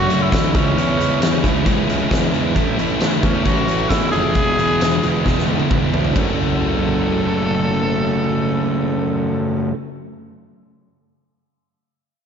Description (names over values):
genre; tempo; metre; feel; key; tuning
classic rock; 133 BPM; 4/4; straight; F# minor; A4 = 444 Hz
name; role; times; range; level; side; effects
growling tenor saxophone; melody; 0.0-9.7 s; C#4 to A4; -23 LUFS; equal; slapback echo
overdriven electric guitar; riff; 0.0-9.8 s; E2 to F#4; -22 LUFS; right 7 dB; none
sludgy distorted guitar; riff; 0.0-9.7 s; E2 to F#4; -23 LUFS; left 9 dB; overdrive
fuzz picked electric bass; bass; 0.0-9.7 s; E1 to F#2; -24 LUFS; left 1 dB; overdrive
huge arena drum kit; drums; 0.1-6.3 s; crash cymbal, hi-hat, kick drum, snare drum, tambourine, toms; -20 LUFS; equal; none
room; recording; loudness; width
moderate scoring stage reverb, RT60 1.9 s, studio reverb; big arena sound, nothing above 7.6 kHz; -16 LUFS; side -7 dB against mid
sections
0.0-6.2 A section; 6.2-9.8 B section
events
drum fill 5.3-6.2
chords
0.0 F#m; 0.5 C#m; 2.6 A; 4.4 E; 6.2 F#m